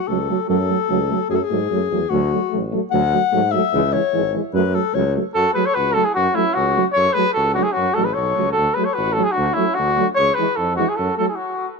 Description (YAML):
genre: balkan folk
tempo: 149 BPM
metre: 2/4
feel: swing 53% on 16ths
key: F# minor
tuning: A4 = 440 Hz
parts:
  - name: dark alto saxophone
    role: second line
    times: 0.0-11.4 s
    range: C#4 to F#5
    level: -23 LUFS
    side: left 12 dB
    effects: none
  - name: dark euphonium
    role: accompaniment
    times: 0.1-11.3 s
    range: E3 to F#3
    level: -24 LUFS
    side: right 16 dB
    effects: none
  - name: mellow French horn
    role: accompaniment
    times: 0.1-11.3 s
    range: G#3 to A3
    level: -27 LUFS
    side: left 14 dB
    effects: none
  - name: warm tuba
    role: bass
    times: 0.1-11.1 s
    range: G#1 to G#2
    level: -24 LUFS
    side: right 2 dB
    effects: none
  - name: mellow cornet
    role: melody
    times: 5.3-11.7 s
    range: E4 to C#5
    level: -18 LUFS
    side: left 1 dB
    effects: tape echo
room: light reverb, small room ambience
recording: 1960s-style stereo with parts hard left and right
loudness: -16 LUFS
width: side -4 dB against mid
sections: 0.0-5.3 A section; 5.3-11.8 B section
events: alto saxophone solo 0.0-5.3; stop 11.4-11.8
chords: 0.0 F#m; 2.1 D; 3.7 C#m; 4.5 F#m; 8.6 D; 10.2 C#m; 11.0 F#m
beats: 0.09 | 0.49 0.90 | 1.30 1.71 | 2.12 2.52 | 2.93 3.33 | 3.73 4.14 | 4.54 4.95 | 5.35 5.75 | 6.15 6.56 | 6.96 7.36 | 7.77 8.17 | 8.57 8.97 | 9.38 9.78 | 10.18 10.59 | 10.99 11.39